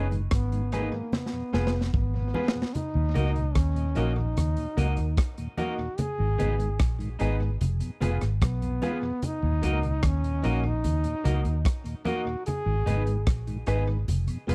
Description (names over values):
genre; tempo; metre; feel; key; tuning
roots reggae; 74 BPM; 4/4; straight; Eb minor; A4 = 439 Hz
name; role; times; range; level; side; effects
warm trombone; melody; 0.0-13.2 s; Bb3 to Ab4; -36 LUFS; equal; tape echo
electric guitar at the edge of break-up; accompaniment; 0.0-14.5 s; Eb4 to Eb5; -42 LUFS; equal; tape echo
warm upright piano; stabs; 0.0-14.5 s; Bb3 to Cb5; -36 LUFS; equal; none
vintage muted fingered electric bass; bass; 0.0-14.5 s; F1 to Eb2; -29 LUFS; equal; none
mellow tonewheel organ; accompaniment; 0.1-14.5 s; Eb2 to F4; -38 LUFS; equal; slow rotary speaker
crunchy breakbeat drum kit; drums; 0.1-14.5 s; hi-hat, kick drum, rim click, snare drum; -30 LUFS; equal; none
congas; percussion; 0.1-14.3 s; none; -36 LUFS; equal; none
room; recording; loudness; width
little or no reverb; dry, close 1970s-style studio recording; -27 LUFS; mono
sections
0.0-2.7 A section; 2.7-14.5 B section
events
drum fill 1.1-2.7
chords
0.0 Abm; 1.1 Fdim; 2.7 Ebm; 6.0 Abm; 7.6 Fdim; 9.2 Ebm; 12.5 Abm